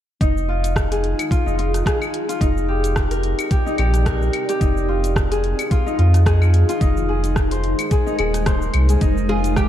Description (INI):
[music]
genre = organic downtempo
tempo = 109 BPM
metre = 4/4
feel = swing 55% on 16ths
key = F dorian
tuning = A4 = 440 Hz
[part]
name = granular cloud pad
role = sustained chords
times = 1.1-9.7 s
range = Ab3 to D5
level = -27 LUFS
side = equal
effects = built-in reverb, sidechain pumping
[part]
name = Celtic harp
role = arpeggios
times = 0.2-9.7 s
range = Eb4 to C5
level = -23 LUFS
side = left 2 dB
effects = tape echo
[part]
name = warm sub bass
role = bass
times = 0.2-9.7 s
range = Eb1 to F2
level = -18 LUFS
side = equal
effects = none
[part]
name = deep house drum kit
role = drums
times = 0.2-9.7 s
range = cabasa, claves, hi-hat, rim click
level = -28 LUFS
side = left 1 dB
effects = none
[part]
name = electronic kick drum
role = drums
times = 0.2-9.7 s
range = none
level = -20 LUFS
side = equal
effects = none
[part]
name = oud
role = melody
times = 9.3-9.7 s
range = G4 to Ab4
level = -24 LUFS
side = right 2 dB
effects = none
[sound]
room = light reverb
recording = dark, warm production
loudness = -16 LUFS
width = side -11 dB against mid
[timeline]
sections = 0.2-9.7 A section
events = none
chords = 0.2 Fm7; 2.4 Cm7/F; 4.6 Fm7; 6.8 Ab/F; 9.0 Fm7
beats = | 0.21 0.76 1.31 1.86 | 2.41 2.96 3.51 4.06 | 4.61 5.16 5.71 6.26 | 6.81 7.36 7.92 8.46 | 9.02 9.57